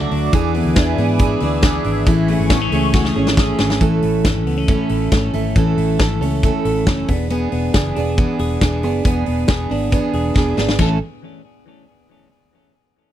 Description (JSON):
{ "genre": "jangly indie pop", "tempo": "138 BPM", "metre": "4/4", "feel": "straight", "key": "A major", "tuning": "A4 = 439 Hz", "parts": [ { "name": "picked steel-string acoustic guitar", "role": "accompaniment", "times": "0.0-11.0 s", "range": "A2 to A4", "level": "-22 LUFS", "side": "right 9 dB", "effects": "none" }, { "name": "phased analog pad", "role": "sustained chords", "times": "0.0-3.8 s", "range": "A3 to D6", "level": "-26 LUFS", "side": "left 1 dB", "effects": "phaser, chorus" }, { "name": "clean electric guitar", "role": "arpeggios", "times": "0.0-11.0 s", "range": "E3 to A4", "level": "-20 LUFS", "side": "left 5 dB", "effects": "tape echo" }, { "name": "vintage muted fingered electric bass", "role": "bass", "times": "0.0-11.0 s", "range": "E1 to G#2", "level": "-22 LUFS", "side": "equal", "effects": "none" }, { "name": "big rock drum kit", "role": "drums", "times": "0.1-10.9 s", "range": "crash cymbal, hi-hat, kick drum, snare drum", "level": "-18 LUFS", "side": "equal", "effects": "none" } ], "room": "little or no reverb", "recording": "dry, close 1970s-style studio recording", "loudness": "-14 LUFS", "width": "side -11 dB against mid", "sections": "0.0-3.8 A section; 3.8-10.8 B section; 10.8-12.5 C section", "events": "drum fill 2.9-3.8, 10.4-10.8", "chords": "0.3 E7; 2.1 Amaj7; 3.8 A; 7.1 E7; 10.8 A" }